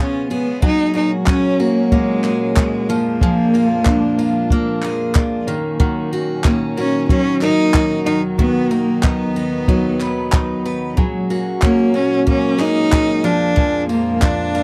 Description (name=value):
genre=acoustic pop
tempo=93 BPM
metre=4/4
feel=straight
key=F# major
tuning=A4 = 439 Hz
part: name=rich cello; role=melody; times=0.0-14.6 s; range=G#3 to D#4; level=-20 LUFS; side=equal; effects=none
part: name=picked steel-string acoustic guitar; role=accompaniment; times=0.0-14.6 s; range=C#3 to B4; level=-22 LUFS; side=equal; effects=none
part: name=warm studio string section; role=sustained chords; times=0.0-14.6 s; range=D#2 to D#4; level=-29 LUFS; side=equal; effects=none
part: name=direct-recorded clean electric guitar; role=arpeggios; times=0.0-14.6 s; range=E#3 to G#4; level=-30 LUFS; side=equal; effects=none
part: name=compact cocktail drum kit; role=drums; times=0.3-14.6 s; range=handclaps, kick drum, tambourine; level=-18 LUFS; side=equal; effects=none
part: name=group handclap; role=percussion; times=1.3-14.4 s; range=none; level=-33 LUFS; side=equal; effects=none
room=little or no reverb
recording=dry, close 1970s-style studio recording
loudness=-17 LUFS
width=mono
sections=0.6-14.6 A section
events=none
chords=0.0 C#7; 0.6 F#add9; 2.9 A#7/E#; 5.5 D#m7; 8.1 B/D#; 11.0 F#add9; 13.2 A#7/E#